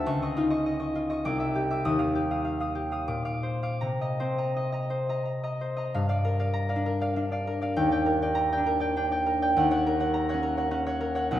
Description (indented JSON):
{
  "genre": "classical, solo harp piece",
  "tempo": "78-106 BPM",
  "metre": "3/4",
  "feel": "rubato",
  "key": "unclear",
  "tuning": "A4 = 440 Hz",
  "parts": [
    { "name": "concert harp", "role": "solo", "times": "0.0-11.4 s", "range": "B1 to Eb6", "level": "-25 LUFS", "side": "equal", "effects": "none" }
  ],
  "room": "wet recital hall reverb, RT60 1.5 s",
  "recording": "heard from further back in the room",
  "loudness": "-25 LUFS",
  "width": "side -12 dB against mid",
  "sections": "0.0-5.9 A section; 5.9-11.4 B section",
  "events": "none",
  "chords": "0.0 Dbadd9; 1.2 Cadd9; 1.8 Ebadd9; 3.1 Bbadd9; 3.8 Cm7; 5.9 Gm7; 7.8 Ebmaj7; 9.6 Ebm7",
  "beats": "| 0.03 0.62 1.22 | 1.82 2.44 3.09 | 3.82 4.56 5.27 | 5.94 6.55 7.16 | 7.77 8.36 8.96 | 9.55 10.13 10.70 | 11.30"
}